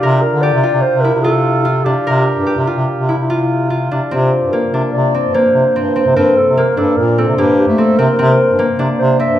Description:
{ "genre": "contemporary instrumental, chamber music in an uneven meter", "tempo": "148 BPM", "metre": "5/4", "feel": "straight", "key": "unclear", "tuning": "A4 = 440 Hz", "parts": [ { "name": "dark clarinet", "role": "melody", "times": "0.0-9.4 s", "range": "G4 to E5", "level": "-17 LUFS", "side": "right 2 dB", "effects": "none" }, { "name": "concert harp", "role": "arpeggios", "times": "0.0-9.4 s", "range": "Bb3 to Bb4", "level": "-16 LUFS", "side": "left 1 dB", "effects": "none" }, { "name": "warm bass clarinet", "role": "bass", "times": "0.0-9.4 s", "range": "G2 to A3", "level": "-15 LUFS", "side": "equal", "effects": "none" } ], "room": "moderate recital hall reverb, RT60 1.7 s", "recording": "minimal, uncompressed stereo recording", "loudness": "-11 LUFS", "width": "side -12 dB against mid", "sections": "0.0-4.1 A section; 4.1-9.4 B section", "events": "none", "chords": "0.0 Gm7/C; 2.1 C7sus4; 4.1 C7(no3)" }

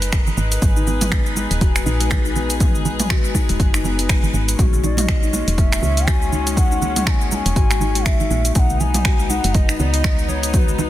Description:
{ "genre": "afro house", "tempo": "121 BPM", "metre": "4/4", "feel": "swing 58% on 16ths", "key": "G# minor", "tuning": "A4 = 440 Hz", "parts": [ { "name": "warm studio string section", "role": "sustained chords", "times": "0.0-10.9 s", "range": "G#3 to B4", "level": "-28 LUFS", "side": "left 1 dB", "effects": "sidechain pumping" }, { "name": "woody FM bass", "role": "bass", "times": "0.0-10.9 s", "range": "D#1 to C#2", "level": "-22 LUFS", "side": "equal", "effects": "sidechain pumping" }, { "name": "deep house drum kit", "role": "drums", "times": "0.0-10.9 s", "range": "finger snaps, hi-hat, shaker, toms", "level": "-23 LUFS", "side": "right 1 dB", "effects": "overdrive, studio reverb, soft clipping on snare" }, { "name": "electronic kick drum", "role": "drums", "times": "0.1-10.7 s", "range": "none", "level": "-18 LUFS", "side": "equal", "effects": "overdrive, studio reverb" }, { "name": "congas", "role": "percussion", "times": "0.3-10.9 s", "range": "none", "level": "-27 LUFS", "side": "right 5 dB", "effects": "none" }, { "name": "kalimba", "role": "arpeggios", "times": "0.8-10.9 s", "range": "G#3 to F#4", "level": "-26 LUFS", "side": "left 5 dB", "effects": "sidechain pumping, ping-pong delay" }, { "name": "breathy bass bansuri", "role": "melody", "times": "4.8-10.9 s", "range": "B4 to A#5", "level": "-26 LUFS", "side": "left 1 dB", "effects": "ping-pong delay" } ], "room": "small room ambience", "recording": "dense, heavily limited modern master", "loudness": "-15 LUFS", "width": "side -14 dB against mid", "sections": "0.0-10.9 A section", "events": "none", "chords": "0.0 G#m7; 4.6 A#m7b5; 8.6 B" }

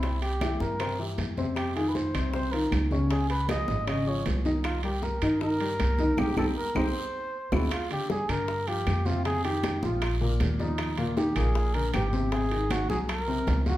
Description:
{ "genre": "Afro-Cuban jazz", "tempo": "156 BPM", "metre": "4/4", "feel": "straight", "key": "C minor", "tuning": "A4 = 440 Hz", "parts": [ { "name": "dark trumpet", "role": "melody", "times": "0.0-13.8 s", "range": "Eb4 to Eb5", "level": "-32 LUFS", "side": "right 1 dB", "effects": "slapback echo" }, { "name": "warm baby grand piano", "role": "accompaniment", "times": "0.0-13.8 s", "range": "Bb2 to Eb5", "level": "-30 LUFS", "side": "left 2 dB", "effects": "none" }, { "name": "upright bass", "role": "bass", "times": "0.0-13.8 s", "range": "Ab1 to G2", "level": "-30 LUFS", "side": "equal", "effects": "none" }, { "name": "bongos", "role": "percussion", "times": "0.0-13.8 s", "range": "none", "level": "-38 LUFS", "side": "left 3 dB", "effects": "none" }, { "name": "congas", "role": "percussion", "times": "0.0-13.8 s", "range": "none", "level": "-36 LUFS", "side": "equal", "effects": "none" }, { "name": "guiro", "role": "percussion", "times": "0.0-13.8 s", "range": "none", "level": "-44 LUFS", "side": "right 4 dB", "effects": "none" }, { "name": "timbales", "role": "percussion", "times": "0.0-13.7 s", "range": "none", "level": "-38 LUFS", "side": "right 4 dB", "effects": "none" }, { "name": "claves", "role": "percussion", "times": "0.4-13.3 s", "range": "none", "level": "-43 LUFS", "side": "left 1 dB", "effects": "none" } ], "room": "wet large studio reverb, RT60 0.9 s", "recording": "heard from further back in the room", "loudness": "-25 LUFS", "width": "side -14 dB against mid", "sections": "0.0-7.7 A section; 7.7-13.8 B section", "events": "band accent 6.2-7.7; drum fill 7.1-7.7", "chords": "0.0 C7; 1.6 F5; 3.1 Dbadd9; 4.6 Cm7; 7.0 D7; 7.7 Gm7; 9.3 F5; 10.0 Bb; 10.8 Ebmaj7; 12.3 Ab7" }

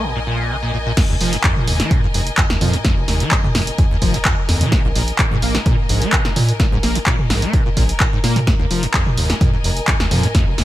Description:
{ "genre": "acid house", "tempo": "128 BPM", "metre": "4/4", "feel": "straight", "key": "F minor pentatonic", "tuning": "A4 = 440 Hz", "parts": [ { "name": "liquid acid bass", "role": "riff", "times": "0.0-10.6 s", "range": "Eb2 to Bb3", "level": "-21 LUFS", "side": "equal", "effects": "overdrive, analog chorus, sidechain pumping, digital delay" }, { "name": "round analog bass", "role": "bass", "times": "0.0-10.6 s", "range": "F1 to Bb2", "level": "-21 LUFS", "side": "equal", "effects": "sidechain pumping" }, { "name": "clear symphonic string section", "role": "texture", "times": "0.0-10.6 s", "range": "Bb4 to Ab5", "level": "-27 LUFS", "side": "left 2 dB", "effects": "sidechain pumping" }, { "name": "electronic kick drum", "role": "drums", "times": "1.0-10.4 s", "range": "none", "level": "-18 LUFS", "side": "equal", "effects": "none" }, { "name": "punchy analog drum machine", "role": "drums", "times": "1.0-10.6 s", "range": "crash cymbal, handclaps, hi-hat, snare drum, toms", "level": "-19 LUFS", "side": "equal", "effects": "none" } ], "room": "little or no reverb", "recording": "bright 1980s-style digital production", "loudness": "-14 LUFS", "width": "side -14 dB against mid", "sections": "1.0-10.6 A section", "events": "drop 1.0-10.6", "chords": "0.0 Bb7(no3); 1.0 Fm7; 4.7 Bb7sus4; 8.5 Fm7" }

